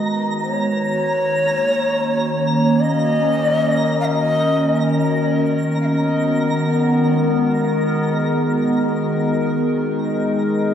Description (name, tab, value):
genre	ambient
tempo	free time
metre	none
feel	none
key	unclear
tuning	A4 = 440 Hz
part	warbly tape-like pad	sustained chords	0.0-10.7 s	D#3 to B4	-18 LUFS	equal	chorus, built-in reverb, phaser
part	twinkling granular texture	texture	0.0-10.7 s	A#5	-28 LUFS	right 1 dB	built-in reverb
part	breathy long shakuhachi	melody	0.4-5.2 s	C#5 to E#5	-22 LUFS	left 2 dB	tape echo
part	analog drone	drone	7.2-10.7 s	G#3 to D#4	-24 LUFS	left 1 dB	chorus
room	wet spring reverb, RT60 2.3 s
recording	echo-heavy mix, studio reverb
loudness	-16 LUFS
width	side -9 dB against mid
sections	0.0-10.7 A section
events	fade-out on synth texture 0.0-10.7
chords	0.4 D#m7; 5.2 Bmaj7; 10.0 Cm7